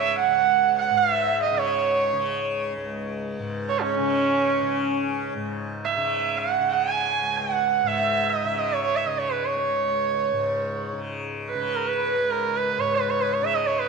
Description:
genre	indian classical, Hindustani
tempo	free time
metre	none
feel	none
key	C# raga bhimpalasi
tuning	A4 = 440 Hz
part	rich sarangi	melody	0.0-13.9 s	C#4 to G#5	-22 LUFS	right 8 dB	none
part	hand-pumped harmonium	second line	0.0-13.9 s	C#4 to G#5	-30 LUFS	left 10 dB	none
part	tanpura	drone	0.0-13.9 s	C#2 to C#3	-31 LUFS	left 3 dB	none
room	moderate plate reverb, RT60 2.6 s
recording	1960s-style stereo with parts hard left and right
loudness	-21 LUFS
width	side -4 dB against mid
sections	0.0-5.3 A section; 5.3-13.9 A section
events	none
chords	none

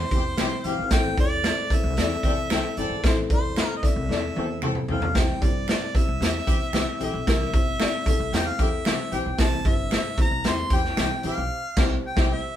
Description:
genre	uptempo 1960s-style soul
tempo	113 BPM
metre	4/4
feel	straight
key	unclear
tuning	A4 = 436 Hz
part	clear harmonica	melody	0.0-12.6 s	C5 to C6	-29 LUFS	equal	none
part	dark upright piano	accompaniment	0.0-12.4 s	A2 to D5	-29 LUFS	left 5 dB	none
part	upright bass	bass	0.0-12.3 s	G1 to E2	-32 LUFS	equal	none
part	warm horn section	second line	0.1-12.3 s	E3 to A4	-34 LUFS	left 2 dB	none
part	raw garage drum kit	drums	0.1-12.3 s	crash cymbal, hi-hat, kick drum, snare drum, toms	-23 LUFS	equal	none
part	congas	percussion	0.1-11.4 s	none	-40 LUFS	right 1 dB	none
part	finger snap	percussion	0.4-11.1 s	none	-38 LUFS	right 5 dB	none
room	moderate studio reverb, RT60 0.6 s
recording	band playing live in one room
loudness	-21 LUFS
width	side -11 dB against mid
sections	0.0-12.6 A section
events	drum fill 4.1-5.2; band accent 11.5-12.6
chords	0.0 C; 0.9 Am; 5.2 C

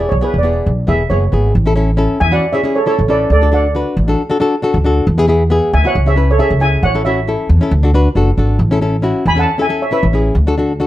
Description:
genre	calypso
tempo	136 BPM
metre	4/4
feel	straight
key	A major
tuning	A4 = 437 Hz
part	steel pan	melody	0.0-10.0 s	A4 to B5	-16 LUFS	right 2 dB	none
part	flamenco guitar	accompaniment	0.0-10.9 s	B3 to B4	-16 LUFS	left 2 dB	none
part	upright bass	bass	0.0-10.9 s	E1 to E2	-14 LUFS	equal	none
room	moderate studio reverb, RT60 0.6 s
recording	none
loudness	-11 LUFS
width	side -14 dB against mid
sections	0.0-1.5 A section; 1.5-10.9 B section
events	steel pan solo 0.0-1.5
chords	0.0 E; 1.5 A; 3.3 D; 5.1 E; 6.0 C#m; 6.8 A; 7.7 D; 8.6 A; 10.4 D

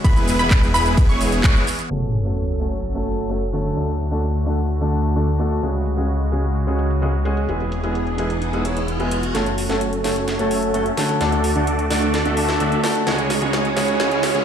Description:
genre	EDM, festival progressive house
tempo	129 BPM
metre	4/4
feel	straight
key	F# minor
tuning	A4 = 441 Hz
part	lush unison pad	sustained chords	0.0-14.4 s	C#3 to A4	-27 LUFS	equal	chorus, sidechain pumping
part	wide unison pluck	arpeggios	0.0-1.6 s	B5 to C#6	-24 LUFS	equal	sidechain pumping, tape echo
part	supersaw chords	riff	0.0-1.6, 9.3-14.4 s	G#3 to E5	-22 LUFS	right 1 dB	sidechain pumping, low-pass filter, tape echo
part	wide detuned saw bass	bass	0.0-14.4 s	E1 to D2	-24 LUFS	equal	chorus, sidechain pumping
part	electronic kick drum	drums	0.0-1.5 s	none	-16 LUFS	equal	none
part	house drum kit	drums	0.0-14.4 s	handclaps, hi-hat, ride cymbal, shaker, snare drum	-26 LUFS	right 1 dB	high-pass filter on hats, high-pass filter on perc, high-pass filter on cymbals, high-pass filter on snare, high-pass filter on room
part	clear baby grand piano	accompaniment	1.9-14.4 s	C#3 to C#5	-24 LUFS	equal	sidechain pumping, tape echo
part	sub drop and riser	sound effects	1.9-14.4 s	none	-28 LUFS	equal	none
room	moderate digital room reverb, RT60 1.0 s, digital ambience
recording	played on a big sound system in a bare room, stone room reverb, high-pass filter, low-pass filter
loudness	-18 LUFS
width	side -8 dB against mid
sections	0.0-1.9 A section; 1.9-9.3 B section; 9.3-14.4 C section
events	drop 0.0-1.9; band accent 1.4; impact 1.9-3.8; filter sweep 1.9-9.3; riser 7.2-9.3; build-up 9.3-14.4; drum fill 9.3-14.4; filter sweep on supersaw synth 9.3-14.4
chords	0.0 E; 1.9 F#m; 3.8 D; 5.6 C#sus4; 7.5 E; 9.3 F#m; 11.2 D; 13.1 C#sus4

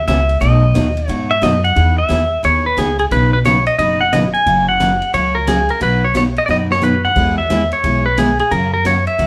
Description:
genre	country, western swing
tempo	178 BPM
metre	4/4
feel	swing 64% on 8ths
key	E major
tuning	A4 = 437 Hz
part	pedal steel guitar	melody	0.0-9.3 s	G#4 to G#5	-18 LUFS	equal	none
part	upright bass	bass	0.0-9.3 s	F#1 to G#2	-20 LUFS	equal	none
part	picked steel-string acoustic guitar	accompaniment	0.1-9.3 s	B2 to B4	-22 LUFS	equal	none
part	swinging big-band drum kit	drums	0.1-9.3 s	crash cymbal, hi-hat, kick drum, ride cymbal, snare drum, toms	-28 LUFS	equal	none
room	wet studio reverb, RT60 0.7 s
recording	band playing live in one room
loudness	-15 LUFS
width	mono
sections	0.0-1.8 A section; 1.8-9.3 B section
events	drum fill 6.5-7.2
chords	0.4 B6; 1.8 Emaj7; 3.1 Badd9; 4.5 F#; 5.8 B; 7.2 E; 8.5 F#

